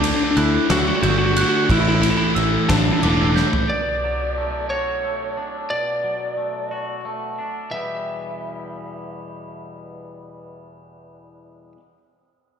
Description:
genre	post-rock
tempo	60 BPM (dotted quarters)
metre	6/8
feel	straight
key	E minor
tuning	A4 = 440 Hz
part	lightly driven lead guitar	melody	0.0-11.7 s	D4 to E5	-23 LUFS	equal	analog delay
part	glockenspiel with soft plastic mallets	arpeggios	0.0-3.7 s	D6 to G6	-28 LUFS	right 4 dB	slapback echo, analog delay
part	crunchy overdriven guitar	riff	0.0-3.7 s	A2 to D4	-21 LUFS	left 1 dB	none
part	picked electric bass	bass	0.0-3.4 s	E1 to D2	-21 LUFS	equal	none
part	big rock drum kit	drums	0.0-3.7 s	kick drum, ride cymbal, snare drum, toms	-24 LUFS	right 1 dB	none
part	twangy electric guitar	arpeggios	3.7-11.8 s	E2 to G4	-32 LUFS	left 1 dB	slapback echo, analog delay
room	wet recital hall reverb, RT60 1.4 s, studio reverb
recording	big arena sound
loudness	-18 LUFS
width	side -7 dB against mid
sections	0.0-3.7 A section; 3.7-7.7 B section; 7.7-11.8 C section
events	drum fill 3.4-3.7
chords	0.0 D; 1.7 A7sus4; 3.7 Bm7; 7.7 Em

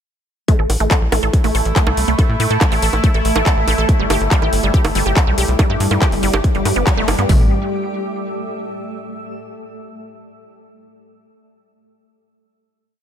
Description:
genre	psychedelic trance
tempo	141 BPM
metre	4/4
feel	straight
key	unclear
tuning	A4 = 440 Hz
part	bubbling stepped-filter texture	sustained chords	0.8-7.3 s	A3 to E4	-24 LUFS	right 1 dB	chorus, built-in reverb, sidechain pumping
part	wide unison pluck	riff	0.5-7.5 s	G3 to A4	-22 LUFS	right 1 dB	auto-pan, vintage 12-bit sampler grit, sidechain pumping, ping-pong delay
part	techno drum kit	drums	0.5-7.4 s	hi-hat, kick drum, toms	-15 LUFS	equal	distortion
part	techno drum kit	drums	0.5-7.3 s	bongos, handclaps, hi-hat	-22 LUFS	right 1 dB	none
part	granular cloud pad	texture	1.7-9.0 s	G3 to E6	-25 LUFS	equal	built-in reverb, sidechain pumping
part	tight sequencer bass	bass	0.6-7.5 s	G1 to A2	-19 LUFS	equal	none
room	digital ambience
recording	none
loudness	-14 LUFS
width	side -9 dB against mid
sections	0.5-7.3 drop; 7.3-9.0 final chord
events	drop 0.5-7.3; band accent 6.9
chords	0.5 A5; 3.9 G5; 7.3 A5

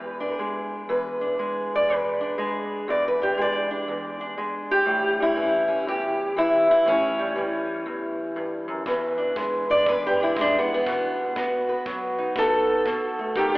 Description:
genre	acoustic country blues, solo or duo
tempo	120 BPM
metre	4/4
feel	swing 64% on 8ths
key	E mixolydian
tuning	A4 = 440 Hz
part	fingerpicked steel-string acoustic guitar	melody	0.0-13.6 s	E2 to D5	-22 LUFS	equal	none
part	kick drum	drums	8.9-13.5 s	none	-38 LUFS	equal	none
room	wet church reverb, RT60 3.4 s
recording	recorded in a church or concert hall, telephone sound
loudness	-22 LUFS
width	side -21 dB against mid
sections	0.0-13.6 A section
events	steel-string acoustic guitar solo 0.0-13.6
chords	0.0 E7; 4.9 A7; 8.9 E7; 10.9 B7

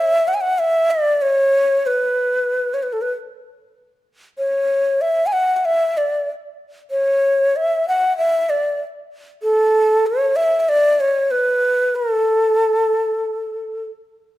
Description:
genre	turkish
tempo	95 BPM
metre	4/4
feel	straight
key	A makam rast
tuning	A4 = 440 Hz
part	breathy reedy ney	solo	0.0-13.8 s	A4 to G#5	-16 LUFS	equal	none
room	moderate recital hall reverb, RT60 1.5 s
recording	none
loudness	-16 LUFS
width	side -15 dB against mid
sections	0.0-14.4 A section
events	none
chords	none

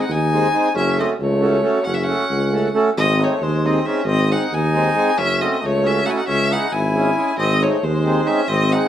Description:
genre	balkan folk, Balkan wedding band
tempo	272 BPM (eighths)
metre	5/8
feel	straight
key	unclear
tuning	A4 = 440 Hz
part	rich violin	melody	0.0-8.9 s	B#4 to G#5	-22 LUFS	left 2 dB	plate reverb
part	mellow trumpet	second line	0.0-8.9 s	G#3 to E4	-25 LUFS	left 1 dB	none
part	accordion	accompaniment	0.0-8.9 s	G#3 to A4	-21 LUFS	right 2 dB	none
part	warm tuba	bass	0.1-8.8 s	F#1 to D#2	-20 LUFS	equal	none
room	wet studio reverb, RT60 0.6 s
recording	heard from further back in the room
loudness	-16 LUFS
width	side -10 dB against mid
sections	0.0-3.0 A section; 3.0-8.9 A section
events	none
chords	0.0 G#; 0.7 F#m; 3.0 G#; 5.2 F#m; 6.3 C#m; 7.4 G#

